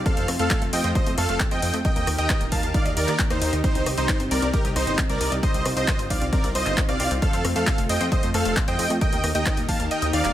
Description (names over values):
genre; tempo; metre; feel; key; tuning
uplifting trance; 134 BPM; 4/4; straight; C dorian; A4 = 440 Hz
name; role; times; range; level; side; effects
lush unison pad; sustained chords; 0.0-10.3 s; C3 to Bb4; -31 LUFS; equal; chorus, sidechain pumping
plucky analog bass; bass; 0.0-10.3 s; Eb1 to F2; -27 LUFS; equal; sidechain pumping
downlifter and swell; sound effects; 0.0-0.1, 10.1-10.3 s; none; -38 LUFS; left 1 dB; none
dense compressed supersaw; melody; 0.1-10.3 s; Eb4 to A5; -26 LUFS; right 1 dB; vintage 12-bit sampler grit, sidechain pumping, tape echo
wide unison pluck; arpeggios; 0.1-10.3 s; A3 to Eb5; -32 LUFS; left 2 dB; sidechain pumping, tape echo
electronic kick drum; drums; 0.1-9.8 s; none; -24 LUFS; equal; none
punchy analog drum machine; drums; 0.1-10.3 s; handclaps, hi-hat, rim click; -29 LUFS; left 1 dB; overdrive
room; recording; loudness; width
light reverb; none; -20 LUFS; side -12 dB against mid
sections
0.0-10.3 A section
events
kick drops out 9.9-10.3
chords
0.1 F; 1.8 Eb; 3.6 Cm; 7.2 F; 9.0 Eb